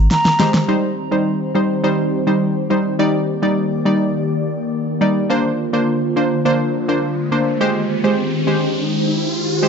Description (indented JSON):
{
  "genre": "dancehall",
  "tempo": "104 BPM",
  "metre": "4/4",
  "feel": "straight",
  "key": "C minor",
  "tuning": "A4 = 440 Hz",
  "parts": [
    { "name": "reedy silver concert flute", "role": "melody", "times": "0.1-0.5 s", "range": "Bb5", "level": "-21 LUFS", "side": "right 1 dB", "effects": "ping-pong delay" },
    { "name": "pop drum kit", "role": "drums", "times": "0.1-0.7 s", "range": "hi-hat, shaker, snare drum", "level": "-18 LUFS", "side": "equal", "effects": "vintage 12-bit sampler grit" },
    { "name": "glassy wavetable pluck", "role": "accompaniment", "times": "0.4-9.7 s", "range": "G3 to D5", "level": "-17 LUFS", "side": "equal", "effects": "chorus" },
    { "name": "airy breathy pad", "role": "sustained chords", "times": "0.7-9.7 s", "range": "D3 to D5", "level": "-20 LUFS", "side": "left 1 dB", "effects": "chorus" },
    { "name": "riser", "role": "sound effects", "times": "6.6-9.7 s", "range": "none", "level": "-24 LUFS", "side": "right 1 dB", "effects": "none" }
  ],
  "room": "light reverb, digital ambience",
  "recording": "dark, warm production, nothing above 7.8 kHz",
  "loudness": "-15 LUFS",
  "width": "side -6 dB against mid",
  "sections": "0.7-9.7 A section",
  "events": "drum fill 0.1-0.7; riser 6.6-9.7",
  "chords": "0.0 Abmaj7; 0.7 Cm; 3.0 Ebmaj7; 5.3 Bbadd9; 7.6 Abmaj7"
}